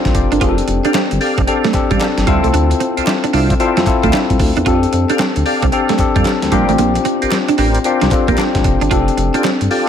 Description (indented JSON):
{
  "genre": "R&B, new jack swing",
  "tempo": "113 BPM",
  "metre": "4/4",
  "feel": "swing 64% on 16ths",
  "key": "F major",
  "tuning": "A4 = 442 Hz",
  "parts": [
    { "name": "bell-like tine electric piano", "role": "accompaniment", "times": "0.0-9.9 s", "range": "C4 to D5", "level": "-17 LUFS", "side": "left 6 dB", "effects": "none" },
    { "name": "clean electric guitar", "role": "riff", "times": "0.1-9.6 s", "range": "G3 to F4", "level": "-20 LUFS", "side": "right 8 dB", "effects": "ensemble chorus" },
    { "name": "smooth synth bass", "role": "bass", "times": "0.1-9.7 s", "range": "F1 to F2", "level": "-17 LUFS", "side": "equal", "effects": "none" },
    { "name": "dusty soul sampler-style drum kit", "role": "drums", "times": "0.1-9.9 s", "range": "hi-hat, kick drum, snare drum", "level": "-18 LUFS", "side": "equal", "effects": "none" },
    { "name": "overdriven tonewheel organ", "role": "stabs", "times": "0.8-9.9 s", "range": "F4 to F5", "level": "-21 LUFS", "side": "equal", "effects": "chorus vibrato, slow rotary speaker, tape echo" },
    { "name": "group handclap", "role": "percussion", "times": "0.9-9.6 s", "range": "none", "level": "-31 LUFS", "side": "left 4 dB", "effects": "none" }
  ],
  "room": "light reverb",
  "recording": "none",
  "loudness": "-12 LUFS",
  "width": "side -8 dB against mid",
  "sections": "0.0-9.9 A section",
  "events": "none",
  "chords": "0.4 F69; 2.3 Dm9; 4.7 F69; 6.5 Bb69; 8.9 F69",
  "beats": "| 0.41 0.95 1.48 2.01 | 2.54 3.07 3.60 4.13 | 4.66 5.19 5.72 6.26 | 6.79 7.32 7.85 8.38 | 8.91 9.44"
}